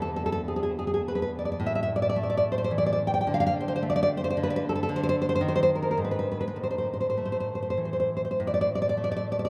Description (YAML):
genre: romantic piece for solo classical guitar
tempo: 97-115 BPM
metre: 3/4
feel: rubato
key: A minor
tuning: A4 = 438 Hz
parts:
  - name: nylon-string guitar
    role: solo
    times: 0.0-9.5 s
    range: E2 to G5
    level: -27 LUFS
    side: equal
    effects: none
room: wet cathedral reverb, RT60 6.3 s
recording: in a vast, echoing space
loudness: -27 LUFS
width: mono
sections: 0.0-8.4 A section; 8.4-9.5 B section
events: none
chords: 0.0 N.C.; 1.6 A5; 3.3 D5; 4.9 N.C.; 6.6 A5